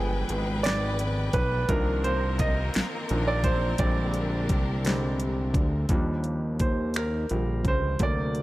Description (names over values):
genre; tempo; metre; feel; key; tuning
slow six-eight R&B; 57 BPM (dotted quarters); 6/8; straight; Eb major; A4 = 439 Hz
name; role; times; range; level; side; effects
warm baby grand piano; accompaniment; 0.0-8.4 s; C3 to Eb5; -29 LUFS; right 2 dB; none
clear studio string section; sustained chords; 0.0-5.9 s; D3 to G5; -34 LUFS; left 2 dB; none
fat analog bass; bass; 0.0-8.4 s; G1 to Eb2; -28 LUFS; equal; none
smooth R&B drum kit; drums; 0.3-8.4 s; finger snaps, hi-hat, kick drum, snare drum; -27 LUFS; equal; overdrive
room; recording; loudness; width
small room ambience; none; -24 LUFS; side -17 dB against mid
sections
0.0-5.9 A section; 5.9-8.4 B section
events
grand piano solo 0.0-5.9, 5.9-8.4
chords
0.0 G7b9; 1.7 Cm11; 3.8 Bb13; 5.9 Ebmaj7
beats
0.63 | 1.68 2.73 | 3.79 4.84 | 5.89 6.95 | 8.00